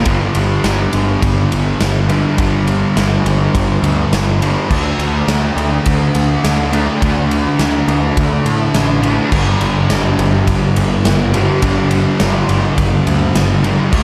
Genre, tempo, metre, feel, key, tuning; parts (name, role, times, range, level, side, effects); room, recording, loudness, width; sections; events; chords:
rock, shoegaze and dream pop; 104 BPM; 4/4; straight; A4 = 439 Hz
fuzz guitar; riff; 0.0-14.0 s; G2 to D4; -17 LUFS; equal; distortion, subtle chorus
fuzz picked electric bass; bass; 0.1-14.0 s; G1 to A2; -20 LUFS; equal; overdrive
huge arena drum kit; drums; 0.1-14.0 s; crash cymbal, kick drum, ride cymbal, snare drum; -22 LUFS; equal
moderate plate reverb, RT60 1.6 s; dreamy mix soaked in reverb; -14 LUFS; mono
0.1-14.0 A section
0.1 G5; 4.7 D5; 9.3 G5